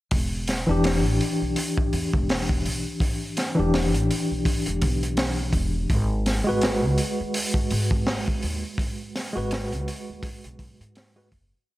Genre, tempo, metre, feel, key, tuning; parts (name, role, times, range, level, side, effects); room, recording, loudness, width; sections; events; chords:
trip hop; 83 BPM; 4/4; swing 58% on 16ths; A4 = 440 Hz
upright bass; bass; 0.1-11.5 s; E1 to G#2; -27 LUFS; equal
crunchy breakbeat drum kit; drums; 0.1-11.5 s; hi-hat, kick drum, snare drum; -26 LUFS; equal
tine electric piano; accompaniment; 0.7-11.3 s; E3 to B4; -26 LUFS; left 1 dB; tremolo, tape echo
little or no reverb; -22 LUFS; side -16 dB against mid
0.1-11.7 groove
fade-out 7.8-11.7
0.1 Em7; 5.9 G#m7